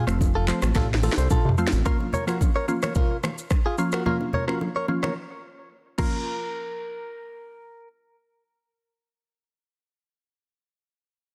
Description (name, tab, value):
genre	afrobeats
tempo	109 BPM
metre	4/4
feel	straight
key	Bb harmonic minor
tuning	A4 = 441 Hz
part	direct-recorded clean electric guitar	riff	0.0-7.9 s	F4 to Db5	-33 LUFS	equal	tape echo
part	glassy wavetable pluck	accompaniment	0.1-9.8 s	F3 to F4	-30 LUFS	equal	chorus
part	fat analog bass	bass	0.1-1.8 s	F1 to C2	-25 LUFS	equal	none
part	afro-pop drum kit	drums	0.1-6.1 s	crash cymbal, finger snaps, handclaps, hi-hat, kick drum, rim click, shaker, snare drum, toms	-27 LUFS	equal	soft clipping on snare
part	bongos and congas	percussion	0.2-6.5 s	none	-34 LUFS	equal	none
room	digital ambience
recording	dense, heavily limited modern master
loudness	-24 LUFS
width	mono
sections	0.0-1.9 A section; 1.9-6.3 B section; 6.3-8.5 C section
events	drum fill 0.8-1.9; break 5.2-6.3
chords	0.0 F; 1.9 Bbm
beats	0.21 0.76 1.31 | 1.86 2.41 2.96 3.51 | 4.06 4.61 5.16 5.71 | 6.26 6.81 7.36 7.91